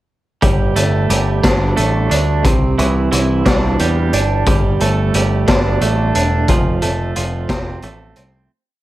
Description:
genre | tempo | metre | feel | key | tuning
quiet-loud alternative rock | 59 BPM (dotted quarters) | 6/8 | straight | unclear | A4 = 439 Hz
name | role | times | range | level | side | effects
twelve-string electric guitar | arpeggios | 0.4-8.5 s | C3 to D4 | -18 LUFS | right 5 dB | tremolo, plate reverb
growling picked electric bass | bass | 0.4-8.5 s | E1 to E2 | -17 LUFS | left 1 dB | overdrive
raw garage drum kit | drums | 0.4-8.3 s | hi-hat, kick drum, snare drum | -17 LUFS | left 1 dB | none
room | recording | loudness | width
light reverb | none | -13 LUFS | side -15 dB against mid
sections
0.4-8.5 verse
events
fade-out 6.5-8.5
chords
0.4 Gsus2; 2.4 Cadd9; 4.5 Gsus2; 6.5 F

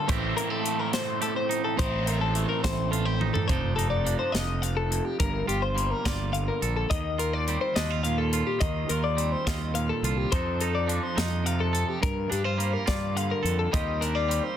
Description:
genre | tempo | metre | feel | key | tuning
math rock and midwest emo | 70 BPM (dotted quarters) | 6/8 | straight | unclear | A4 = 440 Hz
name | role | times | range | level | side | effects
twangy electric guitar | accompaniment | 0.0-14.6 s | F2 to A4 | -31 LUFS | right 8 dB | plate reverb
twelve-string electric guitar | arpeggios | 0.0-14.6 s | G4 to F5 | -30 LUFS | left 6 dB | plate reverb
crunchy overdriven guitar | riff | 0.0-3.5 s | A2 to E4 | -31 LUFS | right 3 dB | phaser
fuzz fingered electric bass | bass | 0.1-14.4 s | F1 to G2 | -29 LUFS | equal | overdrive
crisp fusion drum kit | drums | 0.1-14.4 s | hi-hat, kick drum, snare drum, toms | -30 LUFS | equal | none
room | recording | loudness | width
moderate studio reverb, RT60 0.6 s | dense, heavily limited modern master | -24 LUFS | side -10 dB against mid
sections
0.0-3.5 A section; 3.5-14.6 B section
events
drum fill 3.2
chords
0.1 Am7b5; 3.5 F13; 5.2 Gm7; 6.9 Eb69; 10.3 F13; 12.0 Gm7; 13.7 Eb69

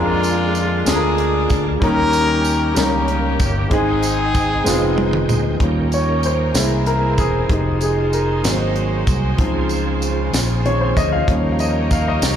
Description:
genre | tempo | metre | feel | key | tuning
slow gospel | 63 BPM (dotted quarters) | 6/8 | straight | unclear | A4 = 440 Hz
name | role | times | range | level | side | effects
clear horn section | melody | 0.0-5.3 s | Ab3 to Bb4 | -21 LUFS | left 1 dB | slapback echo
warm concert grand piano | accompaniment | 0.0-12.4 s | Ab2 to F5 | -20 LUFS | left 1 dB | slapback echo
bright tonewheel organ | sustained chords | 0.0-12.4 s | Db3 to G5 | -28 LUFS | right 5 dB | slow rotary speaker, chorus vibrato
fingered electric bass | bass | 0.0-12.4 s | E1 to F2 | -20 LUFS | equal | none
tight funk drum kit | drums | 0.2-12.4 s | hi-hat, kick drum, snare drum, toms | -22 LUFS | equal | none
tambourine | percussion | 0.2-12.4 s | none | -29 LUFS | right 5 dB | none
warm studio string section | sustained chords | 5.6-12.4 s | Db3 to Db5 | -27 LUFS | right 2 dB | none
room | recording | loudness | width
light reverb | live gig heard through the venue's PA, club reverb | -15 LUFS | side -9 dB against mid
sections
0.0-5.6 A section; 5.6-12.4 B section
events
drum fill 4.7-5.6; grand piano solo 5.6-12.4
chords
0.0 Bb7/F; 1.8 Eb7; 3.7 Abmaj7; 5.6 Eb7; 6.5 C7b13; 7.5 Fm7; 8.4 Ab7; 9.4 Dbmaj7; 11.3 Eb7

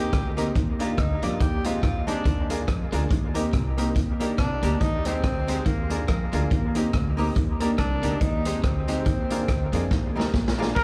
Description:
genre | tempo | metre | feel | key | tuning
ska | 141 BPM | 4/4 | swing 57% on 8ths | Eb major | A4 = 440 Hz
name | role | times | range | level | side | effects
breathy tenor saxophone | melody | 0.0-10.3 s | Bb3 to G4 | -34 LUFS | equal | dub echo, slapback echo
archtop guitar, miked and amplified | accompaniment | 0.0-10.7 s | G3 to C5 | -34 LUFS | equal | dub echo
clear upright piano | stabs | 0.0-10.7 s | Ab3 to Ab4 | -34 LUFS | equal | dub echo, slapback echo
upright bass | bass | 0.0-10.8 s | Bb1 to F2 | -30 LUFS | equal | none
clean electric guitar | riff | 0.1-10.5 s | Bb2 to F3 | -36 LUFS | equal | dub echo, slapback echo
vintage drum kit | drums | 0.1-10.8 s | crash cymbal, hi-hat, kick drum, rim click, snare drum | -29 LUFS | equal | none
mellow trumpet | melody | 10.8 s | Bb4 | -24 LUFS | equal | none
room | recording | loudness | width
studio ambience | live gig heard through the venue's PA, club reverb, vinyl crackle | -25 LUFS | mono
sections
0.0-10.8 A section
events
drum fill 9.9-10.8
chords
0.0 Cm7; 0.6 Ebmaj7; 1.4 Abmaj7/Eb; 2.3 Bb7/Eb; 3.1 Cm7/Eb; 4.0 Ebmaj7; 4.8 Abmaj7/Eb; 5.7 Bb7/Eb; 6.5 Cm7/Eb; 7.4 Ebmaj7; 8.2 Abmaj7/Eb; 9.1 Bb7/Eb; 9.9 Cm7/Eb; 10.3 Bb7

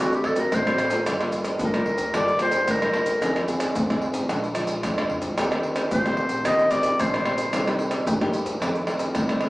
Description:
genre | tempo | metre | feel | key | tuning
samba and choro | 111 BPM | 4/4 | straight | unclear | A4 = 441 Hz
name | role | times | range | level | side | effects
warm clarinet | second line | 0.0-7.8 s | F#4 to Eb5 | -24 LUFS | equal | none
nylon-string guitar | accompaniment | 0.0-9.5 s | F2 to A4 | -28 LUFS | left 1 dB | none
upright bass | bass | 0.0-9.5 s | F1 to F2 | -38 LUFS | equal | none
maracas, pandeiro, surdo and tamborim | percussion | 0.1-9.5 s | none | -24 LUFS | equal | none
room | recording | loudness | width
wet stone room reverb, RT60 1.3 s | band playing live in one room, small speaker sound | -21 LUFS | side -19 dB against mid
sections
0.0-9.5 A section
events
clarinet solo 0.0-9.5; drum fill 5.0-5.4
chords
0.0 D7; 1.1 Gm9; 3.2 Fm7; 4.3 Bb7; 5.4 Eb6; 7.5 Cm7; 8.6 F7

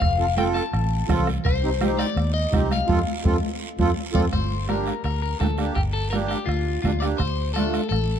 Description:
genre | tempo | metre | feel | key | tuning
latin, cumbia | 167 BPM | 4/4 | straight | G minor | A4 = 440 Hz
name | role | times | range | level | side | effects
electric guitar at the edge of break-up | second line | 0.0-8.2 s | F4 to A5 | -28 LUFS | left 6 dB | phaser
vintage muted fingered electric bass | bass | 0.0-8.2 s | F1 to F2 | -25 LUFS | equal | none
bombo | percussion | 0.0-8.1 s | none | -27 LUFS | right 1 dB | none
guiro | percussion | 0.0-8.2 s | none | -40 LUFS | right 7 dB | none
accordion | accompaniment | 0.2-7.8 s | A3 to A4 | -28 LUFS | right 5 dB | light tremolo tuning
congas | percussion | 0.4-7.7 s | none | -29 LUFS | equal | none
room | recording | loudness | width
light reverb | dark, warm production | -20 LUFS | side -8 dB against mid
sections
0.0-4.3 A section; 4.3-8.2 B section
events
clean electric guitar solo 0.0-4.3, 4.3-8.2; band accent 2.9-4.3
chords
0.0 F; 1.5 Cm; 2.9 F; 4.3 Gm; 7.2 Dm

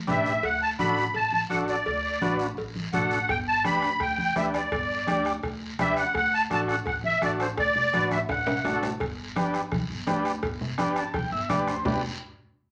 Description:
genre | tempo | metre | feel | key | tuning
latin, cumbia | 168 BPM | 4/4 | straight | G major | A4 = 440 Hz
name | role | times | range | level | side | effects
upright bass | bass | 0.0-12.0 s | G1 to D2 | -39 LUFS | equal | none
musette accordion | melody | 0.1-8.8 s | C5 to B5 | -28 LUFS | equal | none
overdriven combo organ | accompaniment | 0.1-12.0 s | D4 to A5 | -31 LUFS | equal | none
congas | percussion | 0.1-11.9 s | none | -36 LUFS | equal | none
cowbell and timbales | percussion | 0.1-11.9 s | none | -38 LUFS | equal | none
guiro | percussion | 0.1-11.9 s | none | -45 LUFS | equal | none
bombo | percussion | 3.3-11.9 s | none | -39 LUFS | equal | none
room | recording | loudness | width
wet club reverb, RT60 0.6 s | none | -26 LUFS | mono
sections
0.0-9.0 A section; 9.0-11.9 B section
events
drum fill 7.9-9.0; transistor combo organ fill 10.8-11.9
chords
0.4 D; 3.3 G; 6.1 D; 9.0 G

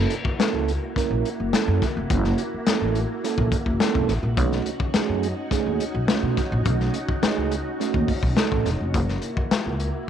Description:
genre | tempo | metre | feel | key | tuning
funk | 105 BPM | 4/4 | straight | F# mixolydian | A4 = 440 Hz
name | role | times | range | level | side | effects
soft string machine | sustained chords | 0.0-10.1 s | A#3 to F#4 | -31 LUFS | equal | ensemble chorus
mellow tonewheel organ | stabs | 0.0-8.7 s | A3 to A#4 | -27 LUFS | right 12 dB | chorus vibrato
upright bass | bass | 0.0-9.9 s | E1 to B2 | -25 LUFS | equal | none
crunchy breakbeat drum kit | drums | 0.1-9.9 s | hi-hat, kick drum, snare drum | -24 LUFS | left 3 dB | none
room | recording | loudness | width
light reverb, small room ambience | 1960s-style stereo | -21 LUFS | side -9 dB against mid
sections
0.0-10.1 A section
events
break 8.9-10.1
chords
0.0 F#7#9; 4.4 B9; 8.9 F#7

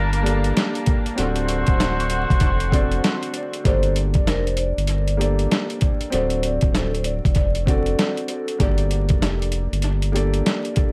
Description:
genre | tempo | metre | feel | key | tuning
hip hop, boom-bap hip-hop | 97 BPM | 4/4 | swing 61% on 16ths | G harmonic minor | A4 = 440 Hz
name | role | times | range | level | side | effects
dark upright piano | accompaniment | 0.0-10.9 s | Bb3 to D5 | -29 LUFS | equal | cassette tape, high-pass filter, low-pass filter, tape echo
warm studio string section | sustained chords | 0.0-3.6 s | D3 to A5 | -34 LUFS | equal | high-pass filter, low-pass filter
clear horn section | stabs | 0.0-3.3 s | G3 to C5 | -30 LUFS | equal | high-pass filter, low-pass filter, tape echo
saturated sub bass | bass | 0.0-10.4 s | D1 to G1 | -25 LUFS | equal | none
boom bap sampler-style drum kit | drums | 0.1-10.9 s | hi-hat, kick drum, snare drum | -24 LUFS | equal | tape echo
vibraphone with soft mallets | melody | 3.7-8.1 s | A4 to D5 | -30 LUFS | equal | high-pass filter, low-pass filter, tape echo
room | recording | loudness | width
little or no reverb | echo-heavy mix, vinyl crackle | -21 LUFS | mono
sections
0.0-3.7 A section; 3.7-10.9 B section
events
none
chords
0.0 Gmadd9; 1.2 D7; 3.7 Gmadd9; 6.1 D7; 8.6 Gmadd9

